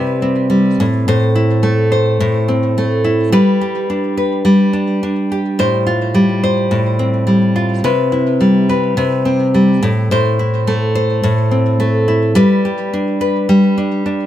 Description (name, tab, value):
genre	pop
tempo	106 BPM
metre	4/4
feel	swing 55% on 16ths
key	unclear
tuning	A4 = 440 Hz
part	nylon-string guitar	solo	0.0-14.3 s	A2 to C5	-12 LUFS	equal	digital delay
room	light reverb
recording	none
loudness	-12 LUFS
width	side -12 dB against mid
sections	0.0-14.3 A section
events	none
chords	0.0 Cmaj7; 0.8 Am; 3.3 G; 5.6 Fadd9/A; 7.8 Cmaj7; 9.8 Am; 12.4 G